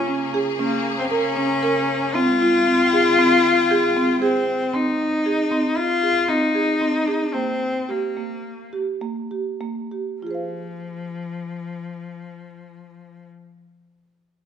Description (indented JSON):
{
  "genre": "contemporary instrumental, chamber music in an uneven meter",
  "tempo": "96-116 BPM",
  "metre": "5/4",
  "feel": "straight",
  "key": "F minor",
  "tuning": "A4 = 435 Hz",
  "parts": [
    { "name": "rich cello", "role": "melody", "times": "0.0-13.3 s", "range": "F3 to F4", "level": "-20 LUFS", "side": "left 3 dB", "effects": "none" },
    { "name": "clear symphonic string section", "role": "sustained chords", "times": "0.0-4.7 s", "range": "Db3 to G5", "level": "-28 LUFS", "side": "left 3 dB", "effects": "none" },
    { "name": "marimba with medium mallets", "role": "arpeggios", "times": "0.1-13.4 s", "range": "Bb3 to F5", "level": "-23 LUFS", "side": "right 3 dB", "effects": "none" }
  ],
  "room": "wet recital hall reverb, RT60 1.7 s",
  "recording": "none",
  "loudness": "-18 LUFS",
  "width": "side -8 dB against mid",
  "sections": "0.0-4.7 A section; 4.7-10.2 B section; 10.2-13.4 C section",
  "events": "slowing down 5.8-10.2",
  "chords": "0.0 Bbm7; 2.1 Fm9; 4.7 Fm7; 7.3 N.C.; 10.2 Fm"
}